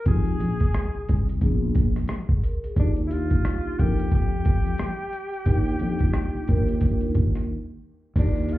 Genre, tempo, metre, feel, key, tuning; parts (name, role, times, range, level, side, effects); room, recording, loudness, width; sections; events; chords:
hip hop, jazz-hop; 89 BPM; 4/4; swing 61% on 16ths; Eb major; A4 = 440 Hz
bright alto saxophone; melody; 0.0-8.6 s; D4 to Ab4; -33 LUFS; left 1 dB
vibraphone with soft mallets; accompaniment; 0.1-8.6 s; Ab3 to Bb4; -31 LUFS; right 1 dB
sustaining fretless electric bass; bass; 0.1-8.6 s; Bb1 to F2; -25 LUFS; left 1 dB
dusty soul sampler-style drum kit; drums; 0.1-8.6 s; crash cymbal, hi-hat, kick drum, rim click; -22 LUFS; equal; overdrive
digital ambience; heard muffled through a wall, club reverb, EQ, faint mains hum; -21 LUFS; side -16 dB against mid
0.0-8.2 A section
break 7.5-8.2
0.1 Fm7; 1.4 Bb7b9; 2.8 Ebmaj7